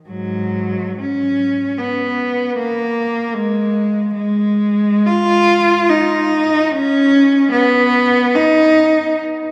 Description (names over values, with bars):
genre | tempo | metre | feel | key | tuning
classical, free, expressive piece for unaccompanied cello | free time | none | none | unclear | A4 = 441 Hz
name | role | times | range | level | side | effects
rich cello | solo | 0.1-9.2 s | G#2 to E#4 | -16 LUFS | equal | none
room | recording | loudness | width
wet church reverb, RT60 3.3 s | recorded in a church or concert hall | -15 LUFS | mono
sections
0.0-9.5 A section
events
none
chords
none